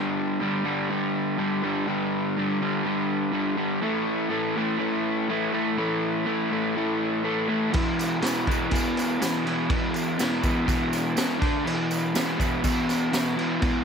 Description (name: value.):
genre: garage rock duo or trio.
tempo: 123 BPM.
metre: 4/4.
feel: straight.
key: unclear.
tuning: A4 = 440 Hz.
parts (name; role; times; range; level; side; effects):
crunchy overdriven guitar; riff; 0.0-13.8 s; E2 to D4; -24 LUFS; equal; none.
vintage drum kit; drums; 7.7-13.7 s; crash cymbal, kick drum, snare drum; -27 LUFS; equal; none.
tambourine; percussion; 8.0-13.7 s; none; -38 LUFS; right 8 dB; none.
room: light reverb.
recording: none.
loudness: -23 LUFS.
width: side -6 dB against mid.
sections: 0.0-13.8 A section.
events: none.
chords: 0.0 G5; 3.8 A5; 7.7 E5; 11.4 D5; 11.7 E5.